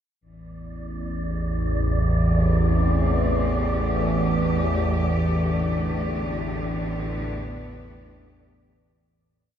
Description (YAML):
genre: dark ambient drone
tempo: free time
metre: none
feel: none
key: A minor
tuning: A4 = 440 Hz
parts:
  - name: bright studio cello section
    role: sustained chords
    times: 0.2-9.1 s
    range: A2 to G4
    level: -32 LUFS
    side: left 1 dB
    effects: none
  - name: analog drone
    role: drone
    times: 0.7-9.2 s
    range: A1 to E2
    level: -22 LUFS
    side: equal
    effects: chorus, phaser
  - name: wind-like tuned noise texture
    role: texture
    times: 0.8-9.1 s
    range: D5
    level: -31 LUFS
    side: equal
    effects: built-in reverb
room: wet cathedral reverb, RT60 6.3 s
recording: dark, warm production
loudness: -21 LUFS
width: side -9 dB against mid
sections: 0.2-9.1 A section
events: fade-in on cello section 0.2-9.1; fade-out 4.6-9.1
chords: 0.2 Am7; 4.6 Gadd9/A